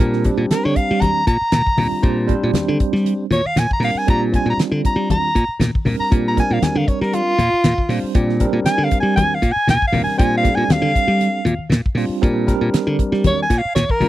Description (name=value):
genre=electric jazz fusion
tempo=118 BPM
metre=4/4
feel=swing 54% on 16ths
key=Bb major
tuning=A4 = 440 Hz
part: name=bell-like tine electric piano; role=accompaniment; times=0.0-14.1 s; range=G3 to C5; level=-22 LUFS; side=right 3 dB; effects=fast stereo tremolo
part: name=glassy slap bass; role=bass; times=0.0-14.1 s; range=Bb2 to G3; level=-19 LUFS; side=equal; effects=none
part: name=damped 70s drum kit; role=drums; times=0.1-14.1 s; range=hi-hat, kick drum, snare drum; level=-18 LUFS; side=equal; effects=none
part: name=warm soprano saxophone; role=melody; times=0.5-14.1 s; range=F4 to Bb5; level=-19 LUFS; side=equal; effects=none
part: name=congas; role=percussion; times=0.8-14.1 s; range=none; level=-23 LUFS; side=left 4 dB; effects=none
room=little or no reverb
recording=dry, close 1970s-style studio recording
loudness=-15 LUFS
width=side -14 dB against mid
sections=0.0-14.1 A section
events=soprano saxophone solo 0.0-14.1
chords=0.0 Bb69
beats=| 0.00 0.51 1.02 1.53 | 2.04 2.55 3.06 3.56 | 4.08 4.58 5.09 5.60 | 6.11 6.62 7.13 7.64 | 8.15 8.66 9.17 9.68 | 10.19 10.70 11.21 11.72 | 12.23 12.74 13.25 13.76